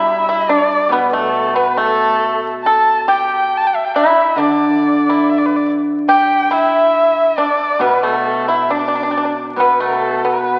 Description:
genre	chinese traditional, Chinese chamber ensemble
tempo	69 BPM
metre	2/4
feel	rubato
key	D zhi mode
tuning	A4 = 440 Hz
part	warm erhu	melody	0.0-10.6 s	A4 to A5	-19 LUFS	equal	none
part	pipa	second line	0.0-10.6 s	A3 to A4	-18 LUFS	equal	none
part	steel-string zither	accompaniment	0.0-10.6 s	B2 to G3	-22 LUFS	equal	none
room	wet concert hall reverb, RT60 1.9 s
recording	very old 78 rpm record, vinyl crackle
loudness	-15 LUFS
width	mono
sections	0.0-9.6 A section; 9.6-10.6 B section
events	none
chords	none

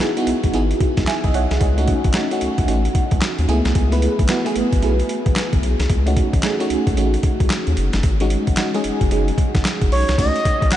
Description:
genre	R&B, new jack swing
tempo	112 BPM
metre	4/4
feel	swing 63% on 16ths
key	unclear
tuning	A4 = 440 Hz
part	FM electric piano with tremolo	accompaniment	0.0-10.8 s	G#3 to G#5	-21 LUFS	right 1 dB	phaser
part	boom bap sampler-style drum kit	drums	0.0-10.8 s	crash cymbal, handclaps, hi-hat, kick drum, snare drum	-20 LUFS	equal	none
part	round analog bass	bass	0.3-10.7 s	F#1 to D#2	-20 LUFS	equal	none
part	expressive synth lead	melody	9.9-10.8 s	C#5 to F#5	-19 LUFS	right 1 dB	chorus
room	moderate huge ambient reverb, RT60 8.4 s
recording	dreamy mix soaked in reverb, nothing above 10.4 kHz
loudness	-16 LUFS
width	side -12 dB against mid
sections	0.0-10.2 A section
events	FM electric piano fill 0.8-1.6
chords	0.0 C#m11; 1.6 F#m6/A; 3.5 F#m11; 5.9 F#m69; 8.0 G#7sus4; 10.2 B9

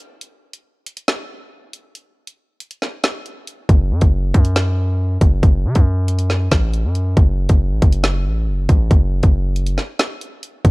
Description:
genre	hip hop, drill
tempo	138 BPM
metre	4/4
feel	half-time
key	F# minor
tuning	A4 = 439 Hz
part	drill drum kit	drums	0.2-10.7 s	hi-hat, kick drum, snare drum	-15 LUFS	equal	none
part	distorted 808-style bass	bass	3.7-10.7 s	F#1 to C#3	-17 LUFS	equal	distortion
room	little or no reverb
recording	dark, warm production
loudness	-14 LUFS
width	side -24 dB against mid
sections	0.0-10.7 A section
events	break 0.0-3.7, 9.8-10.6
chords	none

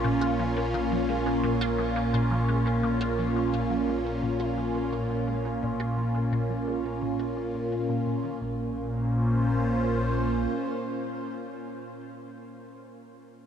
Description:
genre	ambient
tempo	86 BPM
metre	4/4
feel	straight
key	Bb minor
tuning	A4 = 440 Hz
part	phased analog pad	sustained chords	0.0-12.0 s	Bb2 to C6	-26 LUFS	equal	phaser, chorus
part	resonant blip pluck	riff	0.0-8.7 s	Bb2 to F4	-35 LUFS	left 1 dB	phaser, ensemble chorus, ping-pong delay
part	round analog bass	bass	0.0-10.5 s	Bb1	-37 LUFS	equal	none
room	wet huge ambient reverb, RT60 7.7 s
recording	none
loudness	-25 LUFS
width	side -8 dB against mid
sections	0.0-8.4 A section; 8.4-11.2 B section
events	fade-out on synth arpeggio sound 0.0-8.4; fade-out on analog synth bass 0.0-8.4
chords	0.0 Bbmadd9

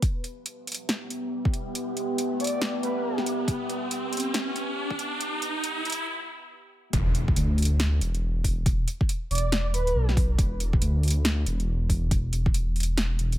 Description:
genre	deep dubstep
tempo	139 BPM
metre	4/4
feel	swing 61% on 16ths, half-time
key	E minor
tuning	A4 = 440 Hz
part	deep dark ambient pad	sustained chords	0.0-6.0 s	B3 to E5	-31 LUFS	right 1 dB	chorus, built-in reverb
part	deep house drum kit	drums	0.0-13.4 s	hi-hat, snare drum	-30 LUFS	equal	overdrive
part	electronic kick drum	drums	0.0-12.5 s	none	-25 LUFS	equal	overdrive
part	riser and impact	sound effects	1.4-8.7 s	none	-32 LUFS	equal	none
part	breathy flute-like synth lead	melody	2.4-3.2, 9.3-10.1 s	B4 to D5	-32 LUFS	right 1 dB	ensemble chorus, cassette tape, dub echo
part	dark detuned saw bass	bass	6.9-13.4 s	E1 to D2	-24 LUFS	equal	none
room	digital ambience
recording	high-pass filter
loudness	-24 LUFS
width	side -14 dB against mid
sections	0.0-6.9 A section; 6.9-13.4 B section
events	build-up 0.0-6.9; filter sweep 0.0-6.9; riser 1.4-6.1; break 6.1-6.9; drop 6.9-13.4; impact 6.9-8.7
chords	0.0 Em; 6.9 E5

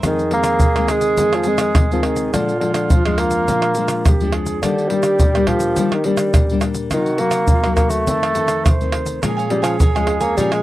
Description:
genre	samba and choro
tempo	104 BPM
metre	4/4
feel	straight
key	F minor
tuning	A4 = 440 Hz
part	baroque flute	second line	0.0-10.6 s	F4 to C5	-24 LUFS	right 5 dB	none
part	cavaquinho	accompaniment	0.0, 9.2-10.6 s	Bb4 to Ab5	-25 LUFS	right 4 dB	none
part	nylon-string guitar	accompaniment	0.0-10.6 s	F2 to Eb4	-22 LUFS	left 5 dB	none
part	tube shaker, surdo, pandeiro and tamborim	percussion	0.0-10.6 s	none	-18 LUFS	equal	none
part	mellow bassoon	melody	0.1-10.6 s	D3 to Bb3	-19 LUFS	equal	none
room	light reverb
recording	dry, close 1970s-style studio recording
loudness	-15 LUFS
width	side -16 dB against mid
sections	0.0-10.6 A section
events	none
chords	0.0 Fm7; 2.3 Bb7; 4.6 Ebmaj7; 6.9 Cm7b5; 8.1 F7; 9.2 Bbm7

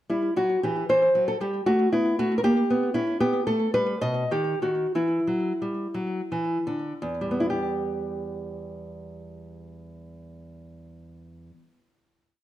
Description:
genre	classical, baroque-style dance for nylon-string guitar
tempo	55-80 BPM (dotted quarters)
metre	6/8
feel	rubato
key	E minor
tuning	A4 = 445 Hz
part	nylon-string guitar	solo	0.1-12.0 s	E2 to D#5	-24 LUFS	equal	slapback echo
room	moderate small room reverb, RT60 0.5 s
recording	dark, warm production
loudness	-23 LUFS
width	side -13 dB against mid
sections	0.1-7.0 A section; 7.0-11.2 final chord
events	slowing down 2.5-7.0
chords	0.1 Em; 1.7 F#m7/A; 2.5 A#dim7; 3.2 Gadd9; 4.0 B; 4.9 N.C.; 7.0 Em

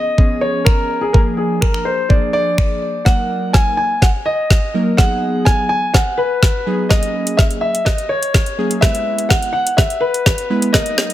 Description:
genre	dance-pop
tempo	125 BPM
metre	4/4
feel	straight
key	Eb phrygian from 3.1 s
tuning	A4 = 440 Hz
part	warm concert grand piano	melody	0.0-11.1 s	Ab4 to Ab5	-18 LUFS	left 1 dB	tape echo
part	glassy digital keys	accompaniment	0.2-11.1 s	F3 to B4	-21 LUFS	right 1 dB	chorus, sidechain pumping
part	smooth R&B drum kit	drums	0.2-11.1 s	finger snaps, hi-hat, kick drum, snare drum	-14 LUFS	equal	soft clipping on snare
room	light reverb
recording	dense, heavily limited modern master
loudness	-13 LUFS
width	side -13 dB against mid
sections	0.0-3.1 A section; 3.1-11.1 B section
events	build-up 3.1-11.1; drum fill 3.1-11.1; filter sweep 3.1-11.1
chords	0.0 Db7; 1.1 Bb7; 3.1 Ebm; 5.0 B6; 6.9 Gbadd9; 8.8 E

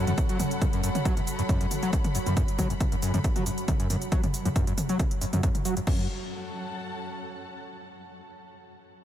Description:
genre	driving peak-time techno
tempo	137 BPM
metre	4/4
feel	straight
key	F# minor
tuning	A4 = 442 Hz
part	overdriven acid bass	riff	0.0-6.1 s	F#2 to F#3	-31 LUFS	equal	distortion, analog chorus, cassette tape, sidechain pumping, ping-pong delay
part	deep dark ambient pad	drone	0.0-5.9 s	F#3	-36 LUFS	right 1 dB	chorus, built-in reverb, sidechain pumping
part	warm studio string section	texture	0.0-7.6 s	C#4 to B5	-39 LUFS	left 1 dB	sidechain pumping
part	techno drum kit	drums	0.1-6.0 s	crash cymbal, hi-hat, shaker, toms	-33 LUFS	left 1 dB	none
part	electronic kick drum	drums	0.2-6.0 s	none	-27 LUFS	equal	none
room	light reverb, digital ambience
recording	none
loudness	-25 LUFS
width	side -11 dB against mid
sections	0.0-5.9 A section; 5.9-7.6 B section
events	fade-out on string section 0.0-5.9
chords	0.0 F#m

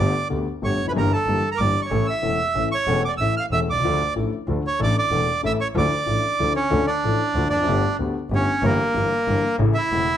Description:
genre	tango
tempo	187 BPM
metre	3/4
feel	rubato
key	D harmonic minor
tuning	A4 = 440 Hz
part	bandoneon	melody	0.0-10.2 s	Bb3 to F6	-22 LUFS	right 3 dB	none
part	dark grand piano	accompaniment	0.0-10.1 s	E1 to A4	-24 LUFS	left 3 dB	none
part	clear double bass	bass	0.0-10.1 s	E1 to D2	-26 LUFS	right 1 dB	none
room	light reverb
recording	none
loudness	-19 LUFS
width	side -10 dB against mid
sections	0.0-6.7 A section; 6.7-10.2 B section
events	none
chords	0.0 Gadd9; 0.9 Edim/G; 1.9 A; 3.8 Dm; 4.8 Asus4; 5.4 A; 5.7 Dmadd9; 6.7 Dm; 7.7 Gadd9; 8.6 Edim/G; 9.6 A

